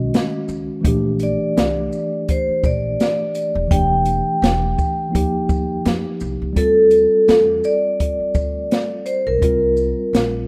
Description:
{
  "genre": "hip hop, jazz-hop",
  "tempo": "84 BPM",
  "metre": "4/4",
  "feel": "swing 58% on 16ths",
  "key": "D minor",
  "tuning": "A4 = 441 Hz",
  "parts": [
    { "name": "vibraphone with medium hard mallets", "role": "melody", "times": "0.0-10.5 s", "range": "A4 to G5", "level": "-20 LUFS", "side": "equal", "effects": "none" },
    { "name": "mellow tine electric piano", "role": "accompaniment", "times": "0.0-10.5 s", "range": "D#3 to Bb4", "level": "-26 LUFS", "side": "equal", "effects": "none" },
    { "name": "upright bass", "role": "bass", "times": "0.0-10.4 s", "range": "Eb1 to F2", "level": "-27 LUFS", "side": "equal", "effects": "none" },
    { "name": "open jazz drum kit", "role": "drums", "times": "0.1-10.3 s", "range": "hi-hat, kick drum, shaker, snare drum", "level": "-22 LUFS", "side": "equal", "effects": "none" }
  ],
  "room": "light reverb, studio ambience",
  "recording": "rough home demo mix",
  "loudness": "-18 LUFS",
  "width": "mono",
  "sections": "0.0-6.6 A section; 6.6-10.5 A section",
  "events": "none",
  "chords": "0.0 Badd9 (rootless); 0.8 Bb6; 3.7 A7sus4/E; 5.1 Ebadd9; 6.6 Dm7; 9.4 C5"
}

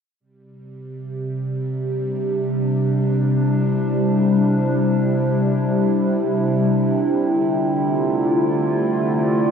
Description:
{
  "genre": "ambient",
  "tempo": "free time",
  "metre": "none",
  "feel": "none",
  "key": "C major",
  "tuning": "A4 = 440 Hz",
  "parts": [
    { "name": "warbly tape-like pad", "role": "sustained chords", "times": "1.0-9.5 s", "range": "C3 to F4", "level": "-18 LUFS", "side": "equal", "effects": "chorus, built-in reverb, phaser" },
    { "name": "overtone-sweeping drone", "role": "drone", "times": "0.9-9.5 s", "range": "C3 to G3", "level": "-24 LUFS", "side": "right 2 dB", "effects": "chorus, built-in reverb" }
  ],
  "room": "wet huge ambient reverb, RT60 8.6 s",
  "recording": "none",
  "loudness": "-17 LUFS",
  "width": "side -7 dB against mid",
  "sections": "0.2-9.5 A section",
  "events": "none",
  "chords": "0.2 Cadd9; 6.7 Dm9"
}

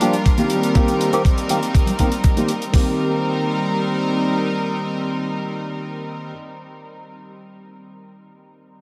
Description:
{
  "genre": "nu-disco, nu disco",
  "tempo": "121 BPM",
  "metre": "4/4",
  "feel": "straight",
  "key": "C minor",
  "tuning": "A4 = 437 Hz",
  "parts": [
    { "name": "barky tine electric piano", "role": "accompaniment", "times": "0.0-6.3 s", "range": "Eb3 to Bb4", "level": "-25 LUFS", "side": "equal", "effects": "phaser, sidechain pumping, analog delay" },
    { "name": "rich studio string section", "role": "sustained chords", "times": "0.0-6.3 s", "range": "G3 to Bb4", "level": "-27 LUFS", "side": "equal", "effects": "sidechain pumping" },
    { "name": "hi-hat", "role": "drums", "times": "0.0-2.7 s", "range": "none", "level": "-34 LUFS", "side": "equal", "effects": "none" },
    { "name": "congas", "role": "percussion", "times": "0.0-2.5 s", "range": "none", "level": "-30 LUFS", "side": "equal", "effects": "none" },
    { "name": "clean 12-bit digital drum machine", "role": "drums", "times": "0.3-2.9 s", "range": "hi-hat, kick drum", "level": "-18 LUFS", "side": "equal", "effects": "none" }
  ],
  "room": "wet huge ambient reverb, RT60 8.7 s",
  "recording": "dreamy mix soaked in reverb",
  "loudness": "-20 LUFS",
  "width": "mono",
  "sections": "0.0-2.7 A section; 2.7-6.7 B section",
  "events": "none",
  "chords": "0.0 Gm7; 0.5 Cm7"
}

